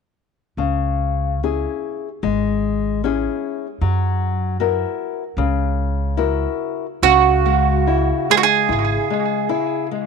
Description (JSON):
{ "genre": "fado-style ballad", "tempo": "71-78 BPM", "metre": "4/4", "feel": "rubato", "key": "C# minor", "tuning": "A4 = 440 Hz", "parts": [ { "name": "nylon-string guitar", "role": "accompaniment", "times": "0.6-10.1 s", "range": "C#3 to A#4", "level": "-22 LUFS", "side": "left 11 dB", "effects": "none" }, { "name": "upright bass", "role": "bass", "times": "0.6-9.0 s", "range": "G#1 to F#2", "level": "-21 LUFS", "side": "right 1 dB", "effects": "none" }, { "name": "bowl-back mandolin", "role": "melody", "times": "7.0-9.9 s", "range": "F#4 to G#4", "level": "-16 LUFS", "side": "right 12 dB", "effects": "tape echo" } ], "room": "light reverb, small room ambience", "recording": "1960s-style stereo with parts hard left and right", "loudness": "-17 LUFS", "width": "side -5 dB against mid", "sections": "0.6-7.0 A section; 7.0-10.1 B section", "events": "none", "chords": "0.6 C#m; 3.8 F#7; 7.0 C#m" }